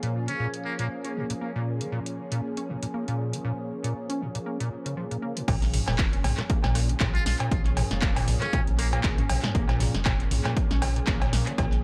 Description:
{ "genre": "acid house", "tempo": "118 BPM", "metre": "4/4", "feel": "swing 56% on 16ths", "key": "Bb minor", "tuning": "A4 = 442 Hz", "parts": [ { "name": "warm analog pad", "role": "sustained chords", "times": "0.0-11.8 s", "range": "F3 to Ab4", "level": "-37 LUFS", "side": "equal", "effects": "chorus, sidechain pumping" }, { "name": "acid bass, square", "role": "riff", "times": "0.0-11.7 s", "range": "Bb2 to Db4", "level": "-34 LUFS", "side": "equal", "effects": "analog chorus, cassette tape, tape echo" }, { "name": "electro analog drum machine", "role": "drums", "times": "0.0-11.8 s", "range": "cowbell, crash cymbal, handclaps, hi-hat, rim click, snare drum, toms", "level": "-33 LUFS", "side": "equal", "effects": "tape echo" }, { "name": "trumpet with metal mute", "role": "melody", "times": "0.3-0.9, 7.1-9.0 s", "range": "Bb3 to F4", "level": "-37 LUFS", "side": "equal", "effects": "vintage 12-bit sampler grit, tape echo" }, { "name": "warm sub bass", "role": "bass", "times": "5.5-11.8 s", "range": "F1 to Bb1", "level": "-30 LUFS", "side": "equal", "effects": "tube saturation, sidechain pumping" }, { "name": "electronic kick drum", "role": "drums", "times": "5.5-11.7 s", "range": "none", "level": "-29 LUFS", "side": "equal", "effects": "overdrive" } ], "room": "light reverb", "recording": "echo-heavy mix", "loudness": "-27 LUFS", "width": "mono", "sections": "0.0-5.5 A section; 5.5-11.8 B section", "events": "drop 5.5-11.8", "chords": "0.0 Bbm7" }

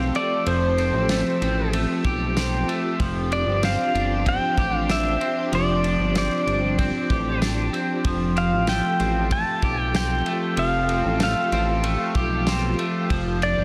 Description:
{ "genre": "dream pop", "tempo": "95 BPM", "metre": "4/4", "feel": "straight", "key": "F lydian", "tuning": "A4 = 440 Hz", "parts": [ { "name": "pedal steel guitar", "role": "melody", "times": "0.0-13.6 s", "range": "C5 to A5", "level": "-28 LUFS", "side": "equal", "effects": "delay" }, { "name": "soft string machine", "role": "sustained chords", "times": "0.0-13.6 s", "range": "F3 to C5", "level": "-30 LUFS", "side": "equal", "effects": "ensemble chorus" }, { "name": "electric guitar at the edge of break-up", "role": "arpeggios", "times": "0.0-13.6 s", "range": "F3 to G4", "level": "-29 LUFS", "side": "equal", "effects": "analog chorus, delay" }, { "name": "fat analog bass", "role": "bass", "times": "0.0-13.6 s", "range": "F1 to B1", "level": "-28 LUFS", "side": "equal", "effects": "none" }, { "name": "loose indie drum kit", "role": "drums", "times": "0.1-13.6 s", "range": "kick drum, ride cymbal, snare drum, tambourine", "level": "-31 LUFS", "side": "equal", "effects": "none" } ], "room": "light reverb, studio reverb", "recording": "dense, heavily limited modern master", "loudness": "-22 LUFS", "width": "mono", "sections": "0.0-13.6 A section", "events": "none", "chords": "0.0 Fadd9; 3.0 Gsus4/F; 8.0 Fadd9; 13.1 Gsus4/F" }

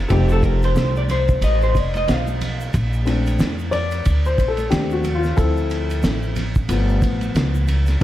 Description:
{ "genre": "hip hop, jazz-hop", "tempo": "91 BPM", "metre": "4/4", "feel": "swing 59% on 16ths", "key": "Bb major", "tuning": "A4 = 438 Hz", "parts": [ { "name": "dark upright piano", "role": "accompaniment", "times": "0.0-8.0 s", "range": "F3 to D5", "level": "-24 LUFS", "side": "left 3 dB", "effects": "none" }, { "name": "upright bass", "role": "bass", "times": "0.0-8.0 s", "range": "F1 to F2", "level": "-20 LUFS", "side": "equal", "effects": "none" }, { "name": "vintage hollow-body jazz guitar", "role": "melody", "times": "0.1-2.4 s", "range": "G4 to F5", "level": "-24 LUFS", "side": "equal", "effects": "lush chorus, analog delay" }, { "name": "cloth-damped thuddy drum kit", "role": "drums", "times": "0.1-8.0 s", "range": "hi-hat, kick drum, ride cymbal, snare drum", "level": "-23 LUFS", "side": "equal", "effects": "vintage 12-bit sampler grit" }, { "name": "egg shaker and congas", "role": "percussion", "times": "0.1-8.0 s", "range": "none", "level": "-34 LUFS", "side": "right 4 dB", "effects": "none" } ], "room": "light reverb, small room ambience", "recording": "none", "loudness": "-17 LUFS", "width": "side -14 dB against mid", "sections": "0.0-2.7 A section; 2.7-8.0 A section", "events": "hollow-body jazz guitar solo 0.0-2.7; upright piano solo 2.7-8.0", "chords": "0.1 F7; 2.7 Bbmaj9; 5.4 Dm7; 6.7 G7" }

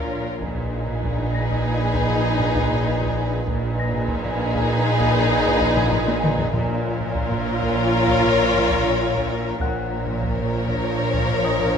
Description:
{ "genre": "cinematic, suspense film score", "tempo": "98 BPM", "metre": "5/4", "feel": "straight", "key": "Bb phrygian", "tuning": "A4 = 440 Hz", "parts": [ { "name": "warm symphonic violin section", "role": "melody", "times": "0.0-11.8 s", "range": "Cb5 to Db5", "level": "-28 LUFS", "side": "left 5 dB", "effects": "none" }, { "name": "rich symphonic violin section", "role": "second line", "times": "0.0-11.8 s", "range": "Ab4 to Bb4", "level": "-27 LUFS", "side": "left 1 dB", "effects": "none" }, { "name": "warm symphonic viola section", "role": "accompaniment", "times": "0.0-11.8 s", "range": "F3 to F4", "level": "-26 LUFS", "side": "left 1 dB", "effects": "none" }, { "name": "warbly tape-like pad", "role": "sustained chords", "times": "0.0-11.8 s", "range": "Bb4 to Ab5", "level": "-32 LUFS", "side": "right 2 dB", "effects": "none" }, { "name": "rich symphonic cello section", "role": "bass", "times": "0.0-11.8 s", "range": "Bb2", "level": "-26 LUFS", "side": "right 2 dB", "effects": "none" }, { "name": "rich symphonic double bass section", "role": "bass", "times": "0.0-11.8 s", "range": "Bb1", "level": "-26 LUFS", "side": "right 1 dB", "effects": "none" }, { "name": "organ-like drone", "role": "drone", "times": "0.0-11.8 s", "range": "Bb1", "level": "-32 LUFS", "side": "right 2 dB", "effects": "ensemble chorus, built-in reverb" }, { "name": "celesta", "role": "texture", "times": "0.0-11.8 s", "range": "Eb5 to Bb6", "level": "-35 LUFS", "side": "left 6 dB", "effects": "none" }, { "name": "taiko ensemble", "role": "drums", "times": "0.4-11.8 s", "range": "none", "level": "-29 LUFS", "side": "left 1 dB", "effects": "none" }, { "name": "timpani", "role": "percussion", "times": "6.5-7.4 s", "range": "Bb2", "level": "-28 LUFS", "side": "left 1 dB", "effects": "none" } ], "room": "moderate scoring stage reverb, RT60 1.8 s", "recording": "minimal, uncompressed stereo recording", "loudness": "-19 LUFS", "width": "side -7 dB against mid", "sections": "0.0-11.8 A section", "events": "drum fill 5.8-6.5", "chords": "0.4 Abm/Bb; 6.5 Bbm" }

